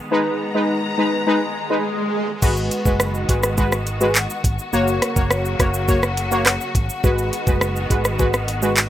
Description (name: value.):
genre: dancehall.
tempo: 104 BPM.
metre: 4/4.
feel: straight.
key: G# minor.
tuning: A4 = 440 Hz.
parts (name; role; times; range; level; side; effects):
clear symphonic string section; sustained chords; 0.0-8.9 s; C#3 to A#5; -27 LUFS; left 2 dB; sidechain pumping.
synth brass stab; accompaniment; 0.1-8.8 s; G#3 to C#5; -20 LUFS; left 1 dB; chorus, sidechain pumping.
swell; sound effects; 0.9-2.4 s; none; -26 LUFS; right 1 dB; none.
mellow fretless electric bass; bass; 2.4-8.9 s; F#1 to G#1; -24 LUFS; equal; none.
island pop drum kit; drums; 2.4-8.9 s; crash cymbal, handclaps, hi-hat, kick drum, rim click, shaker; -19 LUFS; equal; none.
room: little or no reverb.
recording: rough home demo mix.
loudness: -17 LUFS.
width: side -12 dB against mid.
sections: 0.0-2.4 A section; 2.4-8.9 B section.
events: swell 0.9-2.4.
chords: 0.0 G#m; 2.4 G#m7; 4.7 F#; 7.0 G#m7.